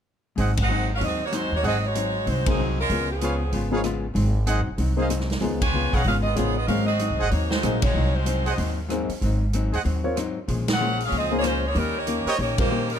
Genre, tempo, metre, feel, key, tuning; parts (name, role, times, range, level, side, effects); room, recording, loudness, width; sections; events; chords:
jazz, big band swing; 190 BPM; 4/4; swing 62% on 8ths; Ab mixolydian; A4 = 441 Hz
archtop guitar, miked and amplified; accompaniment; 0.4-12.9 s; Ab2 to G4; -30 LUFS; left 6 dB
bright trumpet section; stabs; 0.4-9.8, 12.3 s; G4 to Gb5; -29 LUFS; right 3 dB
upright bass; bass; 0.4-13.0 s; Gb1 to Eb2; -25 LUFS; equal
swinging big-band drum kit; drums; 0.4-13.0 s; hi-hat, kick drum, ride cymbal, rim click, snare drum; -30 LUFS; equal
edgy saxophone section; melody; 0.6-13.0 s; F3 to Ab5; -26 LUFS; right 1 dB
warm grand piano; accompaniment; 2.5-12.7 s; F3 to Eb5; -28 LUFS; left 3 dB
light reverb; close, detailed microphones; -21 LUFS; side -8 dB against mid
0.4-13.0 A section
band accent 0.5, 2.4, 5.6, 7.8, 10.6, 12.5
0.4 Ab7; 2.9 Db7; 4.2 Ab7; 5.4 Db7; 6.7 Ab7; 10.5 Bbm7; 11.7 Eb7